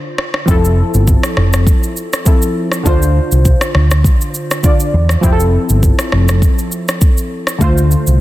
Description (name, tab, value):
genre	afrobeats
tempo	101 BPM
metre	4/4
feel	swing 55% on 16ths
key	F major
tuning	A4 = 440 Hz
part	warm analog keys	accompaniment	0.0-8.2 s	D3 to D5	-18 LUFS	left 1 dB	chorus
part	deep house drum kit	drums	0.2-8.2 s	kick drum, rim click, shaker	-14 LUFS	equal	soft clipping on snare
part	fingered electric bass	bass	0.5-8.2 s	F1 to E2	-11 LUFS	equal	none
room	little or no reverb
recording	dense, heavily limited modern master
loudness	-10 LUFS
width	side -16 dB against mid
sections	0.0-8.2 A section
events	break 0.0-0.5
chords	0.5 Fmaj7; 2.9 Dm7; 5.2 Fmaj7; 7.6 Dm7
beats	| 0.48 1.08 1.67 2.26 | 2.86 3.45 4.05 4.64 | 5.23 5.83 6.42 7.02 | 7.61 8.21